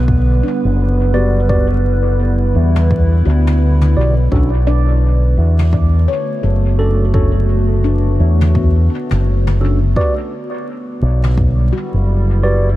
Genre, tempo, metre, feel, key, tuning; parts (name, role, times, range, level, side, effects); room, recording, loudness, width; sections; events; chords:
ambient dub; 85 BPM; 4/4; swing 59% on 16ths; A4 = 439 Hz
warbly tape-like pad; sustained chords; 0.0-12.8 s; D3 to B4; -21 LUFS; right 2 dB; chorus, built-in reverb, phaser
fingered electric bass with an envelope filter; bass; 0.0-12.8 s; F#1 to E2; -12 LUFS; equal
electronic kick drum; drums; 0.1-11.5 s; -17 LUFS; equal
handpan; arpeggios; 0.4-12.8 s; B3 to D5; -26 LUFS; left 4 dB; tape echo
mellow tine electric piano; stabs; 1.1-12.7 s; C#4 to D5; -23 LUFS; right 1 dB; phaser, dub echo
toms; drums; 2.8-11.3 s; -28 LUFS; left 1 dB; dub echo
small room ambience; vinyl crackle; -12 LUFS; side -16 dB against mid
0.0-12.8 A section
0.0 Em7; 4.3 Bm7; 10.0 Em7